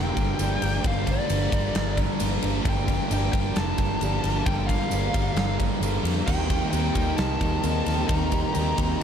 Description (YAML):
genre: rock, shoegaze and dream pop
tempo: 132 BPM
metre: 4/4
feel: straight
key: G minor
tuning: A4 = 440 Hz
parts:
  - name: fuzz lead guitar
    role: melody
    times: 0.0-9.0 s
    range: D5 to Bb5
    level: -31 LUFS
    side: left 1 dB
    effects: distortion, tape echo
  - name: electric guitar at the edge of break-up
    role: riff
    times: 0.0-9.0 s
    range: G2 to Bb4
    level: -30 LUFS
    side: right 12 dB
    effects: reverse reverb
  - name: thick fuzz guitar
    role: riff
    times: 0.0-9.0 s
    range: G2 to Eb4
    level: -31 LUFS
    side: left 11 dB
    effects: distortion, ensemble chorus
  - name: tight distorted guitar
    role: riff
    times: 0.0-9.0 s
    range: G2 to Eb4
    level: -33 LUFS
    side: equal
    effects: distortion
  - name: vintage muted fingered electric bass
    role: bass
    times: 0.0-8.9 s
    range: F1 to F2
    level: -28 LUFS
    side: equal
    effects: none
  - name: huge arena drum kit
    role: drums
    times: 0.2-8.9 s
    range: crash cymbal, kick drum, ride cymbal, snare drum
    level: -28 LUFS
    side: equal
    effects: none
  - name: tambourine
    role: percussion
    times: 0.4-8.7 s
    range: none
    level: -40 LUFS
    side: right 20 dB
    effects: none
  - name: dark analog pad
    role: sustained chords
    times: 6.8-9.0 s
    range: Bb4 to C6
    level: -37 LUFS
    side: left 1 dB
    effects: chorus
room: light reverb, small room ambience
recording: dark, warm production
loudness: -22 LUFS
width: side -8 dB against mid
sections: 0.0-9.0 A section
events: none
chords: 0.0 Gm7; 6.3 Eb6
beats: 0.39 | 0.84 1.29 1.74 2.19 | 2.65 3.10 3.55 4.00 | 4.46 4.91 5.36 5.82 | 6.27 6.73 7.18 7.64 | 8.10 8.55 9.01